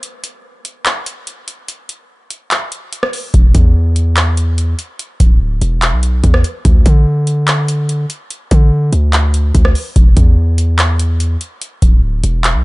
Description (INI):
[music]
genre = hip hop, trap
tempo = 145 BPM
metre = 4/4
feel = half-time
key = unclear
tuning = A4 = 440 Hz
[part]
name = booming analog drum machine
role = drums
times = 0.0-12.5 s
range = handclaps, hi-hat, kick drum, rim click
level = -12 LUFS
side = equal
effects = none
[part]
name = hard-hitting 808-style bass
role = bass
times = 3.3-12.6 s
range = D1 to D3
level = -12 LUFS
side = equal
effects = none
[sound]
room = little or no reverb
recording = nothing above 10.6 kHz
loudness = -10 LUFS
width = side -22 dB against mid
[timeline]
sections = 0.0-10.0 A section; 10.0-12.6 B section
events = break 0.0-3.3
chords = none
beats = | 0.03 0.44 0.86 1.27 | 1.68 2.10 2.51 2.93 | 3.34 3.75 4.17 4.58 | 5.00 5.41 5.82 6.24 | 6.65 7.06 7.48 7.89 | 8.30 8.72 9.13 9.55 | 9.96 10.37 10.79 11.20 | 11.62 12.03 12.44